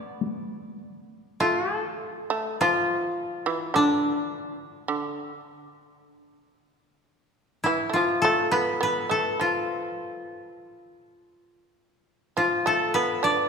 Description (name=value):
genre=japanese traditional, Japanese chamber music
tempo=52 BPM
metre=2/4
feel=rubato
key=D kumoi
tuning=A4 = 439 Hz
part: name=koto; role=melody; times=0.0-13.5 s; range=D4 to D5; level=-24 LUFS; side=left 2 dB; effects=none
part: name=shamisen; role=second line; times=0.0-13.5 s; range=D3 to D4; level=-29 LUFS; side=right 4 dB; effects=none
part: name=solo taiko drums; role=percussion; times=0.2-0.5 s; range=none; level=-33 LUFS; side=left 4 dB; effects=none
room=wet concert hall reverb, RT60 2.5 s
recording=minimal, uncompressed stereo recording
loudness=-23 LUFS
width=side -5 dB against mid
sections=0.0-1.4 A section; 1.4-13.5 B section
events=none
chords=none